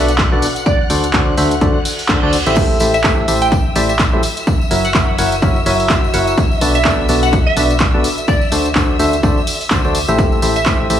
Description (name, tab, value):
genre	piano house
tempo	126 BPM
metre	4/4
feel	swing 58% on 16ths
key	A dorian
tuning	A4 = 440 Hz
part	dark symphonic violin section	sustained chords	0.0-11.0 s	E5 to F#6	-25 LUFS	left 1 dB	sidechain pumping
part	percussive organ stab	riff	0.0-11.0 s	B2 to F#5	-17 LUFS	left 1 dB	chorus, sidechain pumping, digital delay
part	solid FM bass	bass	0.0-11.0 s	F#1 to D2	-20 LUFS	equal	sidechain pumping
part	punchy analog drum machine	drums	0.1-11.0 s	crash cymbal, handclaps, hi-hat, tambourine	-20 LUFS	equal	none
part	electronic kick drum	drums	0.2-10.8 s	none	-16 LUFS	equal	overdrive
part	glassy wavetable pluck	melody	0.7-10.7 s	D5 to G5	-21 LUFS	right 2 dB	chorus, digital delay
part	reverse cymbal	sound effects	1.8-2.6 s	none	-25 LUFS	right 5 dB	none
part	tambourine	percussion	2.6-11.0 s	none	-32 LUFS	left 8 dB	none
room	light reverb, digital ambience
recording	studio reverb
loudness	-12 LUFS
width	side -10 dB against mid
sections	0.0-11.0 A section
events	reverse cymbal 1.8-2.6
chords	0.0 Bm7; 0.7 Am7; 4.2 F#7; 6.4 Bm7; 8.3 Am7